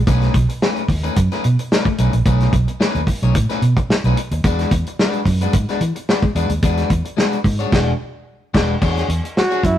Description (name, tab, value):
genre	funk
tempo	110 BPM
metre	4/4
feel	straight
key	unclear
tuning	A4 = 439 Hz
part	vintage muted fingered electric bass	bass	0.0-9.8 s	E1 to E3	-18 LUFS	right 1 dB	none
part	electric guitar at the edge of break-up	accompaniment	0.1-9.7 s	G#3 to C#5	-23 LUFS	left 4 dB	none
part	warm soul drum kit	drums	0.1-9.8 s	crash cymbal, hi-hat, kick drum, snare drum	-18 LUFS	equal	none
part	bright trombone	melody	9.4-9.8 s	E4 to F#4	-17 LUFS	right 1 dB	slapback echo
room	light reverb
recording	rough rehearsal-room recording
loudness	-15 LUFS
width	side -11 dB against mid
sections	0.0-8.8 A section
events	band accent 7.7-8.8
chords	0.1 B9; 4.4 E9; 8.8 E13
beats	| 0.08 0.62 1.17 1.71 | 2.26 2.81 3.35 3.90 | 4.44 4.99 5.53 6.08 | 6.63 7.17 7.72 8.27 | 8.82 9.37